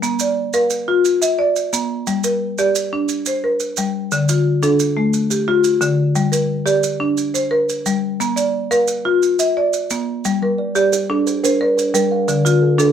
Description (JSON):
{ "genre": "southern african traditional, mbira-style interlocking cycle", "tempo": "118 BPM (dotted quarters)", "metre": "12/8", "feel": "straight", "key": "G equiheptatonic", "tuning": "A4 = 440 Hz", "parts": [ { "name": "marimba with medium hard mallets", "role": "arpeggios", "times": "0.0-12.9 s", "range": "D3 to F5+29c", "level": "-16 LUFS", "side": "left 1 dB", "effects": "none" }, { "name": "maracas", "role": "percussion", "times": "0.0-12.9 s", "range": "none", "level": "-25 LUFS", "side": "right 7 dB", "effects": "none" }, { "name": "kalimba", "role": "arpeggios", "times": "10.4-12.9 s", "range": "D3 to F5+29c", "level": "-20 LUFS", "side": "right 4 dB", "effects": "none" } ], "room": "moderate studio reverb, RT60 0.6 s", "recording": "band playing live in one room", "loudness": "-15 LUFS", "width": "side -8 dB against mid", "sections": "0.0-10.2 A section; 10.2-12.9 A section", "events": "none", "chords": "0.0 Bb; 2.1 Gm; 4.1 Dm; 6.2 Gm; 8.2 Bb; 10.2 Gm; 12.3 Dm" }